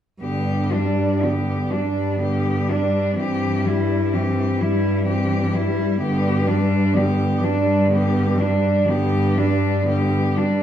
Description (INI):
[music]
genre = classical, lyrical piece for cello ensemble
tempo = 42 BPM (dotted quarters)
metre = 6/8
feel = uneven beats, rubato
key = G major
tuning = A4 = 440 Hz
[part]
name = rich cello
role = melody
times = 0.2-10.6 s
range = D4 to G4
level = -27 LUFS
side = left 5 dB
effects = none
[part]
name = warm cello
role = second line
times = 0.2-10.6 s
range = B3 to E4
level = -23 LUFS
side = right 3 dB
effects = none
[part]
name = clear cello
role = accompaniment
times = 0.2-10.6 s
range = D3 to G3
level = -25 LUFS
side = left 2 dB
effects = none
[part]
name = rich cello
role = bass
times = 0.2-10.6 s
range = G2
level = -22 LUFS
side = equal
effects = none
[sound]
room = wet stone room reverb, RT60 0.9 s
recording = heard from further back in the room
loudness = -18 LUFS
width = side -10 dB against mid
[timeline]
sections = 0.2-10.6 A section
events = none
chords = 0.2 G; 3.2 C/G; 6.0 G